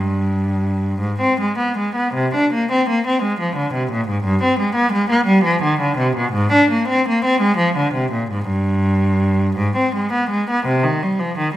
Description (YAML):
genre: classical, baroque-style suite movement for unaccompanied cello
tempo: 56 BPM (dotted quarters)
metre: 6/8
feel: rubato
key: unclear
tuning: A4 = 436 Hz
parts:
  - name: rich cello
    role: solo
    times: 0.0-11.5 s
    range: G2 to D4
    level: -16 LUFS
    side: equal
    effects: none
room: moderate recital hall reverb, RT60 1.4 s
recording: none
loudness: -16 LUFS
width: side -14 dB against mid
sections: 0.0-10.7 A section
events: none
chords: none